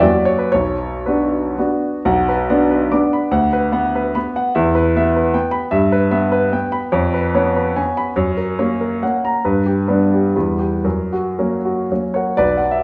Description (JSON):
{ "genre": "classical, romantic triple-time dance for piano with dotted rhythms", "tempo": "109-161 BPM", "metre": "3/4", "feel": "rubato", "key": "B minor", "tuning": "A4 = 441 Hz", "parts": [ { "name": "warm grand piano", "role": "solo", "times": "0.0-12.8 s", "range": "B1 to D6", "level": "-17 LUFS", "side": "equal", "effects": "none" } ], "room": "wet large studio reverb, RT60 0.9 s", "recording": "heard from further back in the room, nothing above 10.9 kHz, faint mains hum", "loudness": "-18 LUFS", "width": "mono", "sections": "0.0-2.0 A section; 2.0-12.4 B section", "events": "none", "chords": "0.0 F#; 0.5 Bm; 3.3 Bm/D; 4.6 Em; 5.7 Em/G; 6.9 C#7/E#; 8.2 F#; 9.4 G; 10.3 Em; 10.8 F#" }